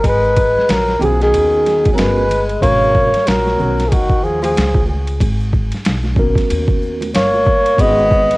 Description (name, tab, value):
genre	hip hop, jazz-hop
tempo	93 BPM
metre	4/4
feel	swing 60% on 16ths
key	G# dorian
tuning	A4 = 440 Hz
part	breathy flugelhorn	melody	0.0-8.4 s	F#4 to D#5	-15 LUFS	equal	cassette tape, tape echo
part	breathy tenor saxophone	second line	0.0-8.4 s	D#3 to B3	-22 LUFS	left 2 dB	cassette tape
part	upright bass	bass	0.0-8.3 s	G1 to D#2	-20 LUFS	equal	none
part	boom bap sampler-style drum kit	drums	0.0-8.4 s	hi-hat, kick drum, ride cymbal, snare drum	-18 LUFS	equal	overdrive, cassette tape
part	tube shaker and congas	percussion	0.0-8.4 s	none	-30 LUFS	right 2 dB	none
part	mellow tine electric piano	accompaniment	1.0-8.0 s	B2 to A#4	-20 LUFS	right 1 dB	medium stereo tremolo, cassette tape
room	studio reverb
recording	home recording on cassette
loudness	-12 LUFS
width	side -21 dB against mid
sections	0.0-2.6 A section; 2.6-8.4 B section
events	none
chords	0.0 G#m11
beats	| 0.04 0.69 1.33 1.98 | 2.62 3.27 3.91 4.56 | 5.20 5.85 6.49 7.14 | 7.78